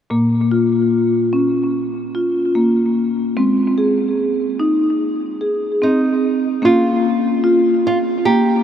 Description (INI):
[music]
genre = world meditative, meditative tuned percussion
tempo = 74 BPM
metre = 4/4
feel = swing 55% on 16ths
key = Bb dorian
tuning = A4 = 440 Hz
[part]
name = marimba with medium mallets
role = arpeggios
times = 0.1-8.6 s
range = Bb2 to Ab4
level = -15 LUFS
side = equal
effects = analog delay
[part]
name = nylon-string guitar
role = melody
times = 5.8-8.6 s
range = Eb4 to G4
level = -18 LUFS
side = right 3 dB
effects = analog delay
[sound]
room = wet huge ambient reverb, RT60 7.7 s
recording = dreamy mix soaked in reverb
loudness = -14 LUFS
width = side -9 dB against mid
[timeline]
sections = 0.1-6.6 A section; 6.6-8.6 B section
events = none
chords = 0.1 Bbm; 3.4 Ab; 6.6 Bbm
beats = | 0.11 0.93 1.74 2.56 | 3.37 4.18 5.00 5.81 | 6.62 7.44 8.25